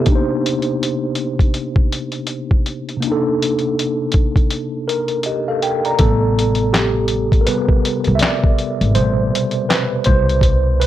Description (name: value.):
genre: lo-fi hip hop.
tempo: 81 BPM.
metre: 4/4.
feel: swing 60% on 16ths.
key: unclear.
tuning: A4 = 440 Hz.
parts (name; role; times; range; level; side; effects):
mellow tine electric piano; accompaniment; 0.0-10.9 s; B2 to Bb5; -18 LUFS; equal; medium stereo tremolo, cassette tape.
lo-fi sampler-style drum kit; drums; 0.1-10.9 s; handclaps, hi-hat, kick drum, snare drum; -16 LUFS; equal; none.
upright bass; bass; 6.0-10.9 s; G#1 to C2; -18 LUFS; equal; none.
room: moderate studio reverb, RT60 0.7 s.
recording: none.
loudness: -15 LUFS.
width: side -12 dB against mid.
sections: 0.0-6.0 A section; 6.0-10.9 B section.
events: break 4.5-6.0; tine electric piano solo 6.0-10.9.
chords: 0.1 Cm9; 6.0 Am9.